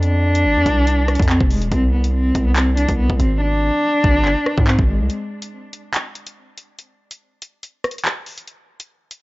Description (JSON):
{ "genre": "hip hop, drill", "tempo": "142 BPM", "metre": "4/4", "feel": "half-time", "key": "unclear", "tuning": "A4 = 439 Hz", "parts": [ { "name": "dark cello", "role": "melody", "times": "0.0-5.0 s", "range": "Ab3 to D4", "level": "-19 LUFS", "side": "equal", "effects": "low-pass filter, tape echo" }, { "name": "distorted 808-style bass", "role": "bass", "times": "0.0-5.1 s", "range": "Eb1 to Ab2", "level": "-18 LUFS", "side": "equal", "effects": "distortion" }, { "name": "drill drum kit", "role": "drums", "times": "0.0-9.2 s", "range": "handclaps, hi-hat, kick drum, rim click", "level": "-20 LUFS", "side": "equal", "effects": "none" } ], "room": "little or no reverb", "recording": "dry, gritty hardware recording, cassette tape, nothing above 7.6 kHz", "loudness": "-15 LUFS", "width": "side -21 dB against mid", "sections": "0.0-9.2 A section", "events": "hi-hats muted 3.4-5.1; break 5.1-9.2", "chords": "0.0 F5; 1.7 Ab; 5.1 N.C.", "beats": "| 0.03 0.45 0.87 1.29 | 1.72 2.14 2.56 2.98 | 3.41 3.83 4.25 4.67 | 5.10 5.52 5.94 6.36 | 6.79 7.21 7.63 8.05 | 8.48 8.90" }